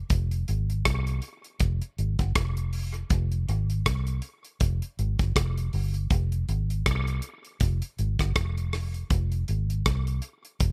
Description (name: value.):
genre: dub reggae.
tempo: 80 BPM.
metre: 4/4.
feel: swing 57% on 16ths.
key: F minor.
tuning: A4 = 437 Hz.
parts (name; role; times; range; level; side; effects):
vintage muted fingered electric bass; bass; 0.1-10.7 s; F1 to C2; -29 LUFS; equal; none.
damped 70s drum kit; drums; 0.1-10.7 s; hi-hat, kick drum, rim click; -30 LUFS; equal; none.
room: little or no reverb.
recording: none.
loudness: -28 LUFS.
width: mono.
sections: 0.0-10.7 A section.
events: none.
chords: none.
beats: | 0.10 0.85 1.60 2.35 | 3.10 3.86 4.61 5.36 | 6.11 6.86 7.61 8.36 | 9.11 9.86 10.61.